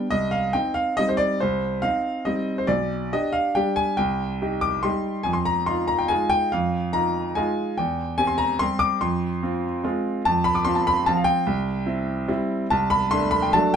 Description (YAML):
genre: classical, piano waltz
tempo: 132-153 BPM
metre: 3/4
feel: rubato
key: C minor, C major from 10.3 s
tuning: A4 = 443 Hz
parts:
  - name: clear baby grand piano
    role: solo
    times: 0.0-13.8 s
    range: B1 to D6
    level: -21 LUFS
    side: equal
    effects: none
room: light reverb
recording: dark, warm production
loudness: -21 LUFS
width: side -7 dB against mid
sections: 0.1-13.8 A section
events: none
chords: 0.1 Cm; 2.7 G/B; 4.0 Cm; 5.3 Fm7; 7.8 C/E; 9.0 Fm; 10.3 F5; 11.5 C; 12.7 D7/C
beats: | 0.09 0.53 0.97 | 1.40 1.83 2.26 | 2.69 3.12 3.56 | 3.98 4.41 4.84 | 5.26 5.68 6.11 | 6.53 6.95 7.38 | 7.79 8.19 8.61 | 9.02 9.42 9.84 | 10.25 10.65 11.06 | 11.46 11.86 12.28 | 12.70 13.11 13.53